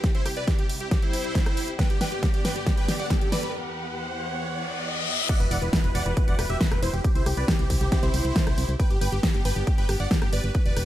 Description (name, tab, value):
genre	uplifting trance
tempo	137 BPM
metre	4/4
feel	straight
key	E minor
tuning	A4 = 438 Hz
part	supersaw chords	melody	0.0-10.8 s	E4 to G5	-30 LUFS	equal	cassette tape, sidechain pumping, tape echo
part	rich studio string section	sustained chords	0.0-10.8 s	C2 to F#5	-35 LUFS	equal	sidechain pumping
part	big-room dance drum kit	drums	0.0-10.8 s	crash cymbal, hi-hat, rim click, snare drum	-28 LUFS	equal	none
part	electronic kick drum	drums	0.0-10.6 s	none	-24 LUFS	equal	none
part	riser, reverse cymbal and impact	sound effects	2.8-7.0 s	none	-33 LUFS	left 2 dB	none
part	solid FM bass	bass	5.4-10.8 s	E1 to C2	-27 LUFS	equal	sidechain pumping
room	little or no reverb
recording	none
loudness	-22 LUFS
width	side -13 dB against mid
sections	0.0-5.3 A section; 5.3-10.8 B section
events	build-up 0.0-5.3; drum fill 0.0-3.5; riser 2.8-5.3; break 3.5-5.3; reverse cymbal 4.4-5.3; drop 5.3-10.8; impact 5.3-7.0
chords	0.0 C; 1.8 G; 3.5 Emadd9; 7.0 C; 8.8 G